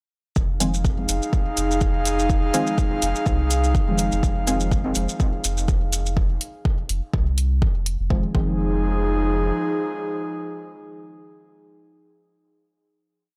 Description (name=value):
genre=dub techno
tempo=124 BPM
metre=4/4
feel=swing 56% on 16ths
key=F minor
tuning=A4 = 439 Hz
part: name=airy breathy pad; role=sustained chords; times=0.7-11.5 s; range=F3 to F5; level=-28 LUFS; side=equal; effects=chorus, sidechain pumping
part: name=soft dub sub bass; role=bass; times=0.4-9.5 s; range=F1 to C2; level=-26 LUFS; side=equal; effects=sidechain pumping
part: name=electronic kick drum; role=drums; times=0.4-8.5 s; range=none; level=-24 LUFS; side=equal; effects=overdrive
part: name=maracas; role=percussion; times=0.4-6.1 s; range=none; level=-31 LUFS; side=equal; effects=none
part: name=filtered dub chord stab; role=riff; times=0.6-4.6, 8.1-11.8 s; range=C5 to Ab5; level=-37 LUFS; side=equal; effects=none
part: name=deep mellow chord stab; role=stabs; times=0.6-11.8 s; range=Eb3 to C4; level=-31 LUFS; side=equal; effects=chorus, phaser, sidechain pumping, dub echo
part: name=electronic hi-hat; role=drums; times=0.6-8.0 s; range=none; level=-30 LUFS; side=equal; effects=overdrive
room=little or no reverb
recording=dry, gritty hardware recording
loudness=-22 LUFS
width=mono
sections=0.4-8.1 groove; 8.1-12.0 final chord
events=none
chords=0.4 Fm7